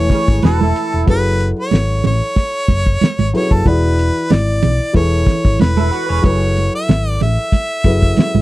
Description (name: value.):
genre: lush 1970s-style soul.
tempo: 93 BPM.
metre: 4/4.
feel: swing 54% on 16ths.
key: unclear.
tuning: A4 = 440 Hz.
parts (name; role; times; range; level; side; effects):
bright harmonica; melody; 0.0-8.4 s; A4 to E5; -20 LUFS; equal; none.
warm grand piano; accompaniment; 0.0-8.4 s; E3 to G#5; -20 LUFS; left 1 dB; none.
hollow-body short-scale fingered electric bass; bass; 0.0-8.4 s; E1 to B1; -16 LUFS; equal; none.
electric guitar through a small old amp; riff; 0.1-1.1, 5.8-6.4 s; E4 to C#5; -22 LUFS; right 7 dB; analog chorus.
cloth-damped thuddy drum kit; drums; 0.1-8.3 s; hi-hat, kick drum, snare drum; -13 LUFS; equal; none.
congas; percussion; 0.1-8.4 s; none; -20 LUFS; right 7 dB; none.
room: little or no reverb.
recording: dry, close 1970s-style studio recording.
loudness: -12 LUFS.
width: side -17 dB against mid.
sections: 0.0-8.4 A section.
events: none.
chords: 0.0 Amaj9; 1.1 F#m11; 3.7 E9; 4.9 Amaj9/E; 6.2 F#m11.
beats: 0.43 | 1.07 1.72 2.36 3.01 | 3.65 4.30 4.95 5.59 | 6.24 6.88 7.53 8.17.